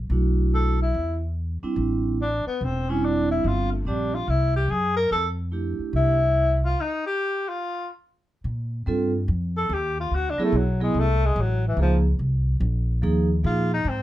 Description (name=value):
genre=jazz, small-group swing and bop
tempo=144 BPM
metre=4/4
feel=swing 64% on 8ths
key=F major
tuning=A4 = 440 Hz
part: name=upright bass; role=bass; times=0.0-14.0 s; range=E1 to Bb2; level=-23 LUFS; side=equal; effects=none
part: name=vibraphone with medium hard mallets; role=accompaniment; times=0.1-6.2, 8.9-13.7 s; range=F3 to A4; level=-25 LUFS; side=right 3 dB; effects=none
part: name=breathy tenor saxophone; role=melody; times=0.5-14.0 s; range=E3 to Bb4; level=-25 LUFS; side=left 2 dB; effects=none
room=light reverb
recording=none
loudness=-21 LUFS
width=side -14 dB against mid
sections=0.0-8.4 A section; 8.4-14.0 B section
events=stop 6.8-8.4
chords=0.1 Bm7; 0.9 Em7; 1.8 Am7; 3.4 Gm7; 4.3 C(#11); 5.1 Fmaj9; 6.8 N.C.; 8.4 Bbsus2; 10.1 D7#11; 11.8 Db69; 13.4 Bb5